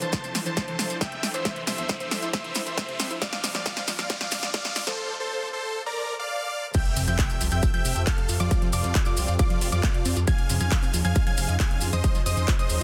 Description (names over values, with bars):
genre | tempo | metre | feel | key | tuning
uplifting trance | 136 BPM | 4/4 | straight | F major | A4 = 441 Hz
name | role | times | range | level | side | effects
big supersaw lead | melody | 0.0-12.8 s | F4 to A5 | -33 LUFS | equal | sidechain pumping, low-pass filter, dub echo
analog string pad | sustained chords | 0.0-12.8 s | F3 to A4 | -40 LUFS | equal | ensemble chorus, sidechain pumping
unison pluck | arpeggios | 0.0-12.8 s | E2 to F4 | -37 LUFS | equal | sidechain pumping, dub echo
gritty driven synth bass | bass | 0.0-12.8 s | F1 to F2 | -30 LUFS | equal | sidechain pumping, high-pass filter
big-room dance drum kit | drums | 0.0-12.8 s | crash cymbal, handclaps, hi-hat, snare drum | -33 LUFS | equal | small room ambience
maracas | percussion | 0.0-12.8 s | none | -37 LUFS | equal | none
riser and impact | sound effects | 0.0-8.5 s | none | -39 LUFS | equal | none
electronic kick drum | drums | 0.1-12.6 s | none | -27 LUFS | equal | small room ambience
unison pluck | second line | 6.7-12.8 s | D6 to Ab6 | -38 LUFS | equal | sidechain pumping, dub echo
room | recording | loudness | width
light reverb | dense, heavily limited modern master, high-pass filter | -25 LUFS | mono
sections
0.0-6.7 A section; 6.7-12.8 B section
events
build-up 0.0-6.7; drum fill 0.0-5.0; riser 0.0-5.0; drop 6.7-12.8; impact 6.7-8.5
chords
0.0 Dsus2; 3.2 Bb/F; 6.7 Fadd9; 10.3 Dbadd9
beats
0.13 0.57 1.01 | 1.45 1.89 2.33 2.78 | 3.22 3.66 4.10 4.54 | 4.98 5.42 5.86 6.30 | 6.75 7.19 7.63 8.07 | 8.51 8.95 9.39 9.83 | 10.28 10.72 11.16 11.60 | 12.04 12.48